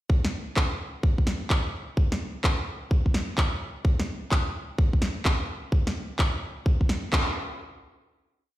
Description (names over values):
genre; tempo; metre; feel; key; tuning
UK garage; 128 BPM; 4/4; swing 64% on 16ths; none; none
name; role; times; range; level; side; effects
electronic kick drum; drums; 0.1-7.2 s; none; -23 LUFS; equal; studio reverb
electronic snare drum and handclaps; drums; 0.2-7.2 s; none; -29 LUFS; equal; studio reverb
room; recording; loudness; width
light reverb, digital ambience; played on a big sound system in a bare room, stone room reverb; -24 LUFS; side -15 dB against mid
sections
0.1-7.6 groove; 7.6-8.6 final hit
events
band accent 7.1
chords
none